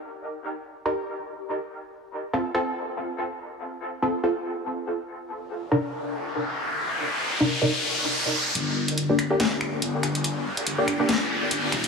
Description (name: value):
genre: deep dubstep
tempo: 142 BPM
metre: 4/4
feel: swing 56% on 16ths, half-time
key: G minor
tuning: A4 = 439 Hz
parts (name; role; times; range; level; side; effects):
- filtered dub chord stab; stabs; 0.9-11.1 s; C3 to Bb4; -27 LUFS; equal; lush chorus, dub echo
- riser; sound effects; 5.7-11.9 s; none; -27 LUFS; left 1 dB; none
- dark detuned saw bass; bass; 8.6-11.9 s; Eb1 to G1; -29 LUFS; left 2 dB; high-pass filter
- garage drum kit; drums; 8.6-11.9 s; finger snaps, hi-hat, snare drum; -26 LUFS; left 2 dB; low-pass filter on hats, studio reverb, low-pass filter on snare
room: wet lush hall reverb, RT60 2.1 s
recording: heavily compressed radio sound, multiband compression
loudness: -24 LUFS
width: side -4 dB against mid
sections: 0.0-8.6 A section; 8.6-11.9 B section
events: riser 5.7-8.6, 8.6-11.9; build-up 8.6-11.9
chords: 0.0 Eb; 1.8 F; 5.2 Cm7; 8.6 Gm